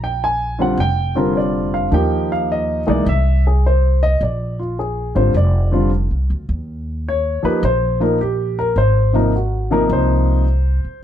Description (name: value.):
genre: jazz piano trio.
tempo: 105 BPM.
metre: 4/4.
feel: swing 67% on 8ths.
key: Eb major.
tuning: A4 = 440 Hz.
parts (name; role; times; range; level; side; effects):
warm upright piano; melody; 0.0-11.0 s; C3 to Ab5; -18 LUFS; left 1 dB; plate reverb.
upright bass; bass; 0.0-10.9 s; F1 to Eb2; -18 LUFS; equal; none.
room: light reverb.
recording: dark, warm production.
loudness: -15 LUFS.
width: side -10 dB against mid.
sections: 0.0-6.5 A section; 6.5-11.0 A section.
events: none.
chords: 0.0 Bb69; 1.9 Ebadd9; 3.1 C; 4.2 Bbadd9; 6.5 Eb; 8.8 Ab69.